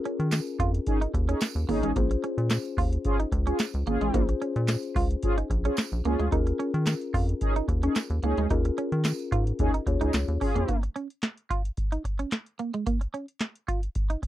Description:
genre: early-eighties boogie funk.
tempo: 110 BPM.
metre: 4/4.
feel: straight.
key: Bb minor.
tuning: A4 = 442 Hz.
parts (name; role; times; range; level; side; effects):
mellow tine electric piano; accompaniment; 0.0-10.7 s; C4 to Db5; -33 LUFS; left 5 dB; none.
electric guitar at the edge of break-up; riff; 0.1-14.3 s; Ab3 to F4; -31 LUFS; right 5 dB; analog chorus.
booming analog drum machine; drums; 0.1-14.3 s; handclaps, hi-hat, kick drum, snare drum; -27 LUFS; equal; none.
rubbery square bass; bass; 0.2-10.7 s; Ab1 to Eb3; -27 LUFS; equal; none.
tambourine; percussion; 0.3-10.3 s; none; -41 LUFS; right 11 dB; none.
mellow synth brass; second line; 0.9-10.8 s; Db4 to Ab4; -29 LUFS; left 1 dB; chorus.
room: little or no reverb.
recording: dry, close 1970s-style studio recording.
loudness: -25 LUFS.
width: side -14 dB against mid.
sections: 0.0-10.7 A section; 10.7-14.3 B section.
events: none.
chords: 0.0 Eb7sus4; 2.0 Bbm9; 6.3 Eb7sus4; 10.7 Bbm.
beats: 0.32 0.87 1.41 | 1.96 2.50 3.05 3.59 | 4.14 4.68 5.23 5.78 | 6.32 6.87 7.41 7.96 | 8.50 9.05 9.59 10.14 | 10.69 11.23 11.78 12.32 | 12.87 13.41 13.96.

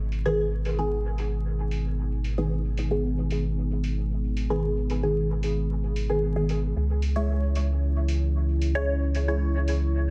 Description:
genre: dub techno.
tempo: 113 BPM.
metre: 4/4.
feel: straight.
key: G# minor.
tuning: A4 = 444 Hz.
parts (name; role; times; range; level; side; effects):
dark analog pad; sustained chords; 0.0-10.1 s; B3 to G#4; -36 LUFS; equal; chorus.
soft dub sub bass; bass; 0.0-10.1 s; G#1 to C#2; -28 LUFS; equal; none.
electronic hi-hat; drums; 0.1-9.8 s; none; -44 LUFS; equal; low-pass filter on perc, low-pass filter on hats, low-pass filter on room.
filtered dub chord stab; stabs; 0.3-9.6 s; D#3 to C#5; -32 LUFS; equal; phaser, dub echo.
room: light reverb.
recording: vinyl crackle.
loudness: -26 LUFS.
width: mono.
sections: 0.0-10.1 A section.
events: filter sweep on analog synth pad 0.0-10.1.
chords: 0.0 G#m; 6.8 C#m.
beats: | 0.39 0.92 1.45 1.98 | 2.51 3.04 3.57 4.10 | 4.63 5.16 5.70 6.23 | 6.76 7.29 7.82 8.35 | 8.88 9.41 9.94.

